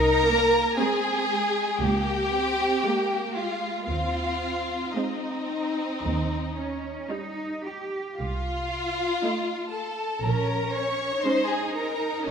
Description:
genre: classical, slow romantic movement for string orchestra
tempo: 55-60 BPM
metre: 4/4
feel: rubato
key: Ab major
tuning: A4 = 440 Hz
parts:
  - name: warm symphonic violin section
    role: melody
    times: 0.0-12.3 s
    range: Eb5 to Db6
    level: -32 LUFS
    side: left 1 dB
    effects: none
  - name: warm symphonic violin section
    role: second line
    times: 0.0-12.3 s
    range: Eb4 to Db5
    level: -26 LUFS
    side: left 1 dB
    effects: none
  - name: clear symphonic double bass section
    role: bass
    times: 0.0-12.3 s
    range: Bb1 to Eb2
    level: -30 LUFS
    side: right 2 dB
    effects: none
  - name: rich symphonic cello section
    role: bass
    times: 0.0-12.3 s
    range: Ab3 to G4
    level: -32 LUFS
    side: right 3 dB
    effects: none
  - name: clear symphonic viola section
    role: accompaniment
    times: 0.8-12.0 s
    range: G3 to Eb4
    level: -32 LUFS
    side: right 3 dB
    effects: none
room: wet scoring stage reverb, RT60 1.7 s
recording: none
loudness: -24 LUFS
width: side -7 dB against mid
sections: 0.0-12.3 A section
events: none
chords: 0.0 Ab/C; 1.8 Bbm7/Db; 3.9 Ab/Eb; 6.0 Eb; 8.2 F7/C; 10.2 Bbm7

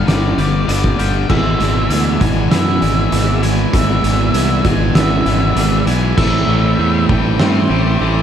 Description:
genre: post-rock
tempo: 98 BPM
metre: 4/4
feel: straight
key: unclear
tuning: A4 = 440 Hz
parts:
  - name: octave-fuzz lead guitar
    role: melody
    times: 0.0-8.2 s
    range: C5 to G#5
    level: -22 LUFS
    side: right 2 dB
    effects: distortion, slapback echo
  - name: soft additive organ-like pad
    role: sustained chords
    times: 0.0-8.2 s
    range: G3 to D5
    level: -29 LUFS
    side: right 2 dB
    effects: none
  - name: glockenspiel with soft plastic mallets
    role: arpeggios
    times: 0.0-8.2 s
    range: D6 to G#6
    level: -32 LUFS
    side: right 6 dB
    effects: none
  - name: twangy electric guitar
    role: arpeggios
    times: 0.0-8.2 s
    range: G2 to G4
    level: -26 LUFS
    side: left 3 dB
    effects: slapback echo
  - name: overdriven semi-hollow guitar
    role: riff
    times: 0.0-8.2 s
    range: E2 to A3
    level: -20 LUFS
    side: left 12 dB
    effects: none
  - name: fuzz fingered electric bass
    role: bass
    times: 0.0-8.2 s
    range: G1 to G2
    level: -17 LUFS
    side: equal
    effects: overdrive
  - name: oversized low-tuned drum kit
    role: drums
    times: 0.1-7.5 s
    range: crash cymbal, hi-hat, kick drum, snare drum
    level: -19 LUFS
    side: right 1 dB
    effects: none
  - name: distorted electric guitar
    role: riff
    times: 1.3-8.2 s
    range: G#2 to E4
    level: -20 LUFS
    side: right 15 dB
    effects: distortion
room: studio reverb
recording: dark, warm production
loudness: -12 LUFS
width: side -9 dB against mid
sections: 0.0-8.2 A section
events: build-up 0.0-8.2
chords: 0.0 G7; 1.3 E7/G#; 6.2 Am7

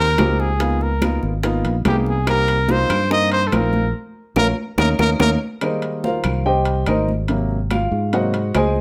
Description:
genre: Afro-Cuban jazz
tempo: 144 BPM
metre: 4/4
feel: straight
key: F minor from 5.6 s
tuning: A4 = 439 Hz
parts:
  - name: warm trumpet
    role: melody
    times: 0.0-5.3 s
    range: G4 to Eb5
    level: -23 LUFS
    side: equal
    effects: slapback echo, plate reverb
  - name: warm upright piano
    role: accompaniment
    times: 0.0-8.8 s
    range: C3 to Ab5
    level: -24 LUFS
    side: equal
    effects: none
  - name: fingered electric bass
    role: bass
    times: 0.0-8.8 s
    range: Ab1 to Ab2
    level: -23 LUFS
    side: equal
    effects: none
  - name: bongos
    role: percussion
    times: 0.2-5.3 s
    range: none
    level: -31 LUFS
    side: equal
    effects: none
  - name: claves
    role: percussion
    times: 0.2-8.8 s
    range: none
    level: -35 LUFS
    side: equal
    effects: none
  - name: congas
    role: percussion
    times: 0.2-8.8 s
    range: none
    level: -28 LUFS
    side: equal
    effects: none
  - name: timbales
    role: percussion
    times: 0.2-8.8 s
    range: none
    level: -28 LUFS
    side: equal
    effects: none
room: light reverb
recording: none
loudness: -19 LUFS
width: mono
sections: 0.0-5.6 A section; 5.6-8.8 B section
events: band accent 3.9-5.6; drum fill 5.0-5.6; upright piano solo 5.6-8.8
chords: 0.0 Abmaj9; 0.6 Db13; 2.3 Cm7; 3.9 Bbm; 4.8 Eb5; 5.6 Fm11; 7.3 Ab7

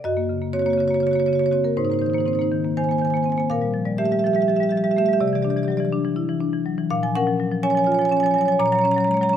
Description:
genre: classical, contemporary piece for solo marimba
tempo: 246 BPM (eighths)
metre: 7/8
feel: rubato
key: Gb lydian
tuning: A4 = 440 Hz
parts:
  - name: marimba with medium mallets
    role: solo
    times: 0.0-9.4 s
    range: Gb2 to Bb5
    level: -18 LUFS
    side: equal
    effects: none
room: moderate scoring stage reverb, RT60 2.0 s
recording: close, detailed microphones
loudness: -18 LUFS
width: side -9 dB against mid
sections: 0.0-9.4 A section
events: none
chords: 0.0 Gb6; 1.8 Abadd9; 3.5 Bb5; 5.2 Cadd9; 6.9 Bbm7; 8.6 Gb/Bb

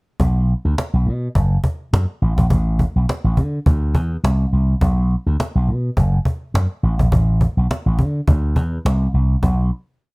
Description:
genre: early-eighties boogie funk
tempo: 104 BPM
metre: 4/4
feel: swing 56% on 16ths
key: unclear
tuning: A4 = 440 Hz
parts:
  - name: slap bass with an envelope filter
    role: bass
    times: 0.2-9.7 s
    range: F#1 to D3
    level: -16 LUFS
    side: equal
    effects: none
  - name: cajon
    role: drums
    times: 0.2-9.6 s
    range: none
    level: -20 LUFS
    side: equal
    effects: none
room: little or no reverb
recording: rough home demo mix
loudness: -16 LUFS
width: side -31 dB against mid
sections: 0.2-9.4 verse; 9.4-10.1 final note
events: none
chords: none

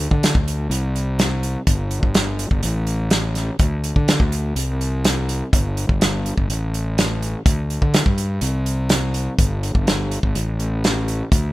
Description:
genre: indie rock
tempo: 124 BPM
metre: 4/4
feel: straight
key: unclear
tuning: A4 = 440 Hz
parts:
  - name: fuzz fingered electric bass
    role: bass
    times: 0.0-11.5 s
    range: G1 to D3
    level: -21 LUFS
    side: equal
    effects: overdrive
  - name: loose indie drum kit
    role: drums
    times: 0.1-11.4 s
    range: hi-hat, kick drum, snare drum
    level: -19 LUFS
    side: equal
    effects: none
room: little or no reverb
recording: rough home demo mix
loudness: -18 LUFS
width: side -17 dB against mid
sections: 0.0-11.5 A section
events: none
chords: none

